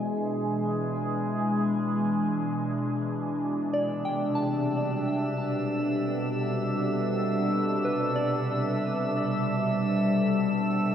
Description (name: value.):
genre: ambient.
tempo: free time.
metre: none.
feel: none.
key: A minor.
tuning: A4 = 440 Hz.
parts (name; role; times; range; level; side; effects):
evolving wavetable pad; sustained chords; 0.0-10.9 s; B2 to A4; -26 LUFS; equal; phaser, built-in reverb.
soft synth bell; arpeggios; 0.0-10.9 s; B4 to A5; -35 LUFS; equal; chorus, diffuse ambient delay.
drifting glass-harmonics texture; texture; 4.3-10.9 s; E5 to E6; -33 LUFS; right 1 dB; chorus, built-in reverb.
room: wet huge ambient reverb, RT60 8.4 s.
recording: in a vast, echoing space.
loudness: -25 LUFS.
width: side -9 dB against mid.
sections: 0.0-3.7 A section; 3.7-10.9 B section.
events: none.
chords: 0.0 E7; 3.7 Am11.